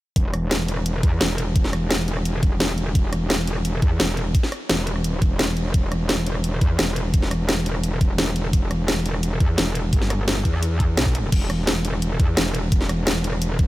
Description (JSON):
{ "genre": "dark technical drum and bass", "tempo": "172 BPM", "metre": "4/4", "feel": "straight", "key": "E minor", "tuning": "A4 = 440 Hz", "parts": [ { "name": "metallic wobble bass", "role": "bass", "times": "0.2-13.7 s", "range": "E1 to E2", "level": "-23 LUFS", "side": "equal", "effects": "chorus, overdrive" }, { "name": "drum and bass drum kit", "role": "drums", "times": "0.2-13.7 s", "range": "crash cymbal, hi-hat, rim click, snare drum", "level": "-24 LUFS", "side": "equal", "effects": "none" }, { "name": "electronic kick drum", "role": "drums", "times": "0.2-13.7 s", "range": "none", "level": "-19 LUFS", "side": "equal", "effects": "none" } ], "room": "digital ambience", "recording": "none", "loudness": "-19 LUFS", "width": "side -17 dB against mid", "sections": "0.2-13.7 A section", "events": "drop 0.2-13.7", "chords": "none", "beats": "| 0.16 0.51 0.86 1.21 | 1.56 1.91 2.25 2.60 | 2.95 3.30 3.65 4.00 | 4.35 4.70 5.04 5.39 | 5.74 6.09 6.44 6.79 | 7.14 7.49 7.83 8.18 | 8.53 8.88 9.23 9.58 | 9.93 10.28 10.63 10.97 | 11.32 11.67 12.02 12.37 | 12.72 13.07 13.42" }